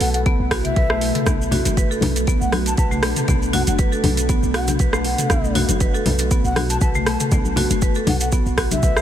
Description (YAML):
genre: afro house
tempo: 119 BPM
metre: 4/4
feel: swing 54% on 16ths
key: B minor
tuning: A4 = 439 Hz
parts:
  - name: breathy bass bansuri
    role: melody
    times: 0.0-9.0 s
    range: E5 to A5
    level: -28 LUFS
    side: left 1 dB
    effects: ping-pong delay
  - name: ethereal airy pad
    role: sustained chords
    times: 0.0-9.0 s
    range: B2 to F#4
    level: -27 LUFS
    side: left 1 dB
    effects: ensemble chorus, built-in reverb, phaser, sidechain pumping
  - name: warm 808-style bass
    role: bass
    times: 0.0-9.0 s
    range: F#1 to B1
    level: -24 LUFS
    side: equal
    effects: tube saturation, sidechain pumping
  - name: afro-pop drum kit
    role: drums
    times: 0.0-9.0 s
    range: hi-hat, rim click, toms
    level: -24 LUFS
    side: equal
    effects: overdrive, small room ambience
  - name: marimba with hard mallets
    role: arpeggios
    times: 0.1-9.0 s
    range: A3 to B4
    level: -25 LUFS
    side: right 1 dB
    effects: sidechain pumping, ping-pong delay
  - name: electronic kick drum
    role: drums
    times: 0.3-8.9 s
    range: none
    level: -20 LUFS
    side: equal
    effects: overdrive, small room ambience
  - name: congas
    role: percussion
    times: 1.3-8.8 s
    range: none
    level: -24 LUFS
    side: left 4 dB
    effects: none
  - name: maracas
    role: percussion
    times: 1.3-9.0 s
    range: none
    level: -30 LUFS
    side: right 4 dB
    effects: none
room: light reverb, small room ambience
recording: none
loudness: -16 LUFS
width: side -10 dB against mid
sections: 0.0-9.0 A section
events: none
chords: 0.0 Bm7